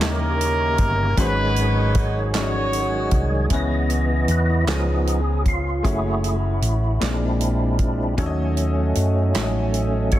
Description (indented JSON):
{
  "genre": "slow gospel",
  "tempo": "51 BPM (dotted quarters)",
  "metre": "6/8",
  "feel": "straight",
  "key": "C# minor",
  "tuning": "A4 = 441 Hz",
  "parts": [
    { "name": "warm horn section", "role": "melody", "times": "0.0-3.5 s", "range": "C#4 to C#5", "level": "-24 LUFS", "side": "right 1 dB", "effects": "none" },
    { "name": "warm grand piano", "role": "accompaniment", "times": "0.0-10.2 s", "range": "G#2 to D#5", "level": "-28 LUFS", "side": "left 4 dB", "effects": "none" },
    { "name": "percussive tonewheel organ", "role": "sustained chords", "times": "0.0-10.2 s", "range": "C#3 to D#5", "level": "-25 LUFS", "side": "right 2 dB", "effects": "slow rotary speaker, chorus vibrato" },
    { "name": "hollow-body short-scale fingered electric bass", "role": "bass", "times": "0.0-10.2 s", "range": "F#1 to F#2", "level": "-22 LUFS", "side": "equal", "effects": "none" },
    { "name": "natural country drum kit", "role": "drums", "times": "0.0-10.2 s", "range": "hi-hat, kick drum, snare drum", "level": "-24 LUFS", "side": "equal", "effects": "none" },
    { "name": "group handclap", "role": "percussion", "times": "0.0-9.7 s", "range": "none", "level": "-31 LUFS", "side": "right 6 dB", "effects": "none" }
  ],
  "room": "light reverb, small room ambience",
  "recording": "dense, heavily limited modern master",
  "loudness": "-18 LUFS",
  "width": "side -13 dB against mid",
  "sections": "0.0-3.5 A section; 3.5-10.2 B section",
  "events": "tonewheel organ solo 3.5-10.2",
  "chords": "0.0 D#7b9; 1.2 G#7sus4; 3.5 C#m7; 4.7 C#7; 5.8 F#m7; 7.0 A#7; 8.2 D#m7b5",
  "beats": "0.01 | 1.17 2.34 | 3.51 4.68 | 5.85 7.01 | 8.18 9.35"
}